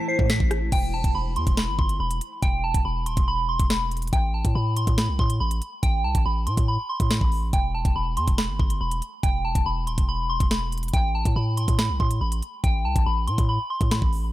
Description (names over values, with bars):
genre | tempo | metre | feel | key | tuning
hip hop, drill | 141 BPM | 4/4 | half-time | E minor | A4 = 443 Hz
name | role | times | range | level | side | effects
soft synth bell | melody | 0.0-14.1 s | G5 to C7 | -28 LUFS | equal | chorus, phaser, low-pass filter, tape echo
concert harp | accompaniment | 0.0-0.8 s | E3 to A4 | -44 LUFS | left 7 dB | none
granular cloud pad | sustained chords | 0.0-0.7 s | A3 to C5 | -34 LUFS | left 3 dB | built-in reverb
long sustained 808-style bass | bass | 0.2-14.3 s | D#1 to A2 | -26 LUFS | equal | none
drill drum kit | drums | 0.2-14.2 s | crash cymbal, hi-hat, kick drum, rim click, snare drum | -23 LUFS | equal | none
room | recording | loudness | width
little or no reverb | none | -21 LUFS | side -15 dB against mid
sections
0.7-14.3 A section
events
none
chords
0.0 Am; 0.7 E5; 4.1 Am; 7.5 E5; 10.9 Am